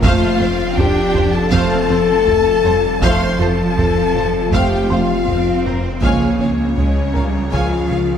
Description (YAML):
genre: cinematic, hybrid orchestral and electronic film score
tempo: 80 BPM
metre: 4/4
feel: straight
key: unclear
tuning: A4 = 440 Hz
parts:
  - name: rich symphonic violin section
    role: melody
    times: 0.0-8.0 s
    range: A4 to G#5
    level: -29 LUFS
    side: left 3 dB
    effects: none
  - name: rich symphonic violin section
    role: second line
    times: 0.0-8.2 s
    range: Bb4 to C6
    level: -25 LUFS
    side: left 2 dB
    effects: none
  - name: rich symphonic viola section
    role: accompaniment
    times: 0.0-8.0 s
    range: G#4 to F5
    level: -27 LUFS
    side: right 1 dB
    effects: none
  - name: clear French horn section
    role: sustained chords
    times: 0.0-8.2 s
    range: Bb3 to C5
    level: -19 LUFS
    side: left 6 dB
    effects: none
  - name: ethereal airy pad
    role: sustained chords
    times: 0.0-8.2 s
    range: F3 to F5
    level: -25 LUFS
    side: equal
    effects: ensemble chorus, built-in reverb
  - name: warm trombone section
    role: sustained chords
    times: 0.0-7.8 s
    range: F3 to A3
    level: -28 LUFS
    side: right 2 dB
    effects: none
  - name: warbly dusty pluck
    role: arpeggios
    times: 0.0-8.1 s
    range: C#3 to F4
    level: -30 LUFS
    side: right 3 dB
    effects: none
  - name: rubbery square bass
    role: riff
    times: 0.0-8.1 s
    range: C#2 to F3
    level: -23 LUFS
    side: left 1 dB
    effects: none
  - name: rich symphonic cello section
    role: bass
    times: 0.0-8.2 s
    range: F3 to D4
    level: -22 LUFS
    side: right 3 dB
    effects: none
  - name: warm symphonic double bass section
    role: bass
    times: 0.0-8.0 s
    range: C#2 to F2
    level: -25 LUFS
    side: right 4 dB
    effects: none
  - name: wide detuned saw bass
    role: bass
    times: 0.0-8.2 s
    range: F1 to C#2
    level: -25 LUFS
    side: right 1 dB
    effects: chorus
  - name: taiko ensemble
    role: drums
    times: 0.0-8.2 s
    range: none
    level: -22 LUFS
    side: right 1 dB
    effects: none
  - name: felt-muted upright piano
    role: texture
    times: 0.0-8.2 s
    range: Bb4 to G6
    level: -32 LUFS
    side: left 1 dB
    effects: tape echo
room: wet scoring stage reverb, RT60 2.0 s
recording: none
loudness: -13 LUFS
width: side -8 dB against mid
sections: 0.0-8.2 A section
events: none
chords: 0.0 F; 6.0 C#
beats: | 0.02 0.77 1.52 2.27 | 3.02 3.77 4.52 5.27 | 6.02 6.77 7.52